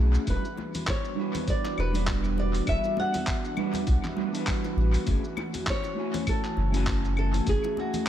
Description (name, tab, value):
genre	sunset chillout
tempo	100 BPM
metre	4/4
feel	swing 58% on 16ths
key	E dorian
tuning	A4 = 442 Hz
part	mellow electric guitar	accompaniment	0.0-8.1 s	G3 to G#5	-32 LUFS	moving between left 5 dB and right 8 dB	auto-pan, dub echo
part	airy breathy pad	sustained chords	0.0-8.1 s	E3 to G#5	-34 LUFS	right 1 dB	chorus
part	warm sub bass	bass	0.0-7.6 s	E1 to B1	-25 LUFS	equal	none
part	dusty soul sampler-style drum kit	drums	0.1-8.1 s	claves, handclaps, hi-hat, shaker	-36 LUFS	left 1 dB	dub echo
part	flamenco guitar	melody	0.3-8.1 s	F#4 to F#5	-33 LUFS	left 1 dB	vintage 12-bit sampler grit, dub echo
part	electronic kick drum	drums	0.3-7.6 s	none	-30 LUFS	equal	none
part	bongos and congas	percussion	0.6-8.0 s	none	-40 LUFS	left 3 dB	dub echo
room	light reverb, digital ambience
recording	echo-heavy mix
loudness	-25 LUFS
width	side -11 dB against mid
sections	0.0-8.1 A section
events	none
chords	0.3 Em9; 5.1 F#m9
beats	| 0.27 0.87 1.47 2.07 | 2.67 3.27 3.87 4.47 | 5.07 5.67 6.27 6.87 | 7.47 8.07